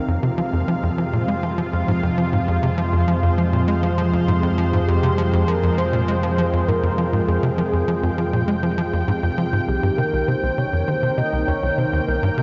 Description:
ambient, sequencer-driven space music; 100 BPM; 4/4; straight; A4 = 438 Hz
lush unison pad; sustained chords; 0.0-12.4 s; C3 to G5; -26 LUFS; equal; chorus
analog drone; bass; 1.1-9.6 s; F2; -26 LUFS; equal; chorus
bubbling stepped-filter texture; texture; 0.0-9.7 s; F5; -38 LUFS; equal; chorus, built-in reverb
tight sequencer bass; riff; 0.1-12.4 s; C2 to Ab3; -24 LUFS; equal; analog delay
soft octave-layered synth lead; melody; 4.9-12.4 s; G4 to Eb5; -29 LUFS; equal; chorus, analog delay
wet huge ambient reverb, RT60 7.3 s; cassette tape, nothing above 7.7 kHz; -20 LUFS; mono
0.0-9.7 A section; 9.7-12.4 B section
0.1 Fm; 9.7 Cm7
| 0.08 0.68 1.28 1.88 | 2.48 3.08 3.68 4.28 | 4.88 5.48 6.08 6.68 | 7.28 7.88 8.48 9.08 | 9.68 10.28 10.88 11.48 | 12.08

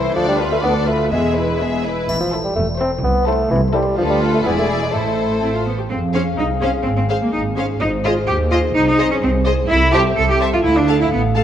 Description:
cinematic, playful, whimsical film cue; 126 BPM; 2/4; straight; A minor, F minor from 5.9 s; A4 = 440 Hz
rich studio violin section; melody; 0.0-11.4 s; B4 to A5; -28 LUFS; left 4 dB
rich studio violin section; second line; 0.0-11.4 s; G#4 to F5; -26 LUFS; left 4 dB
mellow bassoon; accompaniment; 0.0-5.6 s; E3 to C4; -20 LUFS; equal
rich studio viola section; accompaniment; 0.0-11.4 s; B3 to C5; -26 LUFS; equal
rich studio cello section; bass; 0.0-11.4 s; C2 to A4; -20 LUFS; right 1 dB
warm studio double bass section; bass; 0.0-11.4 s; E1 to F2; -21 LUFS; right 2 dB
triangle; percussion; 2.1-3.0 s; -31 LUFS; left 1 dB
mellow French horn section; sustained chords; 5.9-11.4 s; Ab4 to F5; -23 LUFS; left 4 dB
moderate scoring stage reverb, RT60 1.5 s; dark, warm production; -15 LUFS; side -10 dB against mid
0.0-5.9 A section; 5.9-11.4 B section
0.2 Bm7b5/D; 1.1 E; 2.1 Am; 3.0 Am/C; 4.0 Bm7b5/D; 4.5 E7; 4.9 Am; 5.9 Fm; 6.9 Fm/Ab; 7.8 Ab; 8.8 Ab/C; 9.7 Am/C; 10.6 Dm
| 0.16 0.63 | 1.12 1.60 | 2.08 2.56 | 3.04 3.51 | 3.98 4.46 | 4.93 5.42 | 5.91 6.38 | 6.86 7.34 | 7.81 8.28 | 8.75 9.22 | 9.70 10.17 | 10.65 11.12

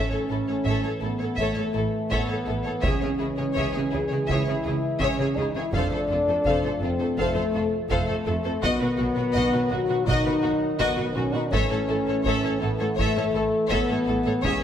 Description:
cinematic, epic orchestral film score; 83 BPM; 4/4; straight; A4 = 435 Hz
rich symphonic violin section; melody; 0.0-14.6 s; F#4 to F5; -32 LUFS; left 3 dB
warm symphonic violin section; second line; 0.0-14.6 s; E4 to D#5; -33 LUFS; left 4 dB
rich symphonic viola section; accompaniment; 0.0-14.6 s; F#4 to A4; -33 LUFS; right 2 dB
mellow French horn section; sustained chords; 0.0-14.6 s; A3 to G#4; -26 LUFS; left 2 dB
mellow trombone section; sustained chords; 0.0-14.6 s; D#3 to A3; -33 LUFS; right 2 dB
rich studio cello section; bass; 0.1-14.5 s; F2 to C#3; -31 LUFS; right 2 dB
rich symphonic double bass section; bass; 0.3-14.5 s; F1 to C#2; -32 LUFS; right 3 dB
taiko ensemble; drums; 0.7-14.6 s; -32 LUFS; equal
wet scoring stage reverb, RT60 1.6 s; -22 LUFS; side -9 dB against mid
0.0-14.6 A section
0.0 A; 2.8 C#m; 5.7 F; 8.6 B; 11.5 A
0.66 1.39 2.11 | 2.84 3.56 4.29 5.01 | 5.73 6.46 7.19 7.91 | 8.63 9.36 10.08 10.81 | 11.53 12.26 12.99 13.72 | 14.44

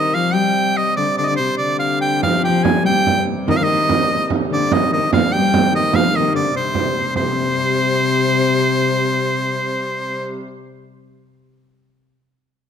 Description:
medieval dance; 97 BPM (dotted quarters); 6/8; straight; C minor; A4 = 439 Hz
edgy shawm; melody; 0.0-10.4 s; C5 to Ab5; -18 LUFS; right 1 dB
dark viola da gamba; second line; 0.0-10.4 s; C3 to G3; -20 LUFS; left 6 dB
dark hurdy-gurdy; drone; 0.0-10.4 s; C3 to G3; -27 LUFS; right 2 dB
frame drum; percussion; 2.2-7.4 s; -20 LUFS; right 6 dB
wet recital hall reverb, RT60 1.8 s; close, detailed microphones; -15 LUFS; side -8 dB against mid
0.0-7.2 A section; 7.2-9.6 B section
0.37 | 0.99 1.61 | 2.23 2.85 | 3.47 4.09 | 4.71 5.32 | 5.94 6.55 | 7.17 7.78 | 8.39 9.00

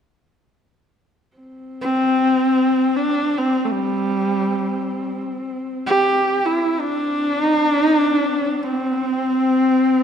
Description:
mongolian traditional, Mongolian folk; free time; C gong mode; A4 = 440 Hz
dark horsehead fiddle; drone; 1.4-10.0 s; C4; -26 LUFS; left 1 dB
clear horsehead fiddle; melody; 1.8-10.0 s; G3 to G4; -17 LUFS; equal; slapback echo
wet scoring stage reverb, RT60 1.8 s; dark, warm production; -17 LUFS; side -8 dB against mid
1.4-10.0 A section
free time

